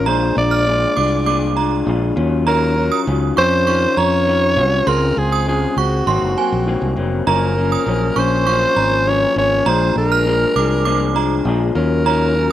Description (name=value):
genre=indie pop, bedroom pop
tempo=100 BPM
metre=4/4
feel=straight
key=Gb lydian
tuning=A4 = 443 Hz
part: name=breathy soprano saxophone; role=melody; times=0.0-12.5 s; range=Gb4 to D5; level=-18 LUFS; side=right 1 dB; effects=slapback echo
part: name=electric guitar through a small old amp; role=accompaniment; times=0.0-12.5 s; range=Gb2 to F4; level=-20 LUFS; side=left 5 dB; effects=vibrato effect, slapback echo
part: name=fingered electric bass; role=bass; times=0.0-12.5 s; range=F1 to F2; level=-20 LUFS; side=equal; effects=none
part: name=synth chime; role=second line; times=0.1-12.3 s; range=Ab5 to F6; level=-22 LUFS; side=right 8 dB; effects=ensemble chorus
room=little or no reverb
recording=recorded outdoors, with no room sound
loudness=-14 LUFS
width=side -12 dB against mid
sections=0.0-7.3 A section; 7.3-12.5 A section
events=none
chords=0.1 Bb7; 2.2 Ebm9; 4.9 Dbmaj7; 6.1 Ab9; 7.3 Gbmaj7; 9.7 Bb7; 11.8 Ebm9